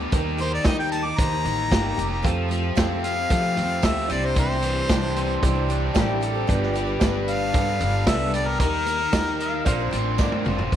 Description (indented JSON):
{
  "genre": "folk rock and heartland rock",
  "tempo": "113 BPM",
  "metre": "4/4",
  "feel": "straight",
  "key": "unclear",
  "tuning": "A4 = 440 Hz",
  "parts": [
    { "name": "bright concert grand piano", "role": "accompaniment", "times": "0.0-10.6 s", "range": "D4 to D5", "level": "-32 LUFS", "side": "right 8 dB", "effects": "none" },
    { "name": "picked twelve-string acoustic guitar", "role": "accompaniment", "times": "0.0-10.7 s", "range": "G2 to B4", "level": "-30 LUFS", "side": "left 11 dB", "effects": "none" },
    { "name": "biting overdriven guitar", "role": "riff", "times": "0.0-10.7 s", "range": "G2 to G4", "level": "-29 LUFS", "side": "right 1 dB", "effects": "spring reverb" },
    { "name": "upright bass", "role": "bass", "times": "0.0-10.8 s", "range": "F1 to F3", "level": "-27 LUFS", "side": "equal", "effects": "none" },
    { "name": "vintage drum kit", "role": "drums", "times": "0.1-10.8 s", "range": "hi-hat, kick drum, snare drum, toms", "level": "-24 LUFS", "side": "equal", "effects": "none" },
    { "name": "bright harmonica", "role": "melody", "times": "0.4-9.6 s", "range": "Bb4 to D6", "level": "-26 LUFS", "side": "left 1 dB", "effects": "none" },
    { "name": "tambourine", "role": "percussion", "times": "2.8-10.3 s", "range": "none", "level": "-41 LUFS", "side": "right 16 dB", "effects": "none" },
    { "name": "pedal steel guitar", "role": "second line", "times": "5.2-10.7 s", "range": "G4 to F5", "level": "-32 LUFS", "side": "right 3 dB", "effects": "none" }
  ],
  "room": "light reverb",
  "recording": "1960s-style stereo with parts hard left and right",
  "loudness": "-20 LUFS",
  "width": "side -10 dB against mid",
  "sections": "0.0-10.7 A section",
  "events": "harmonica solo 0.0-10.7; drum fill 10.2-10.7",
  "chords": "0.1 Eb; 2.2 Fadd9; 4.1 Cadd9; 6.5 G; 8.6 Eb; 9.7 Bbadd9"
}